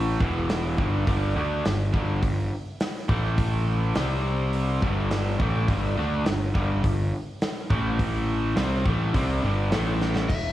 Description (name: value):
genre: classic rock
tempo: 104 BPM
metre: 4/4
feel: straight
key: unclear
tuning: A4 = 444 Hz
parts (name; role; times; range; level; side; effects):
- biting overdriven guitar; riff; 0.0-10.3 s; E2 to D4; -31 LUFS; right 6 dB; none
- overdriven semi-hollow guitar; riff; 0.0-10.3 s; E2 to D4; -31 LUFS; left 6 dB; slapback echo
- fuzz picked electric bass; bass; 0.0-10.5 s; E1 to D2; -26 LUFS; equal; overdrive
- big rock drum kit; drums; 0.2-10.4 s; crash cymbal, hi-hat, kick drum, snare drum; -28 LUFS; equal; none
- biting lead guitar; melody; 10.3-10.5 s; E5; -30 LUFS; left 6 dB; overdrive
room: light reverb, small room ambience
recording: live gig heard through the venue's PA, club reverb, vinyl crackle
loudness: -22 LUFS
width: side -14 dB against mid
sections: 0.0-10.3 A section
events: drum fill 10.0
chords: 0.2 Em; 1.1 G5; 3.1 A5; 4.0 C5; 4.8 G5; 7.7 A5; 8.6 G5; 9.7 A5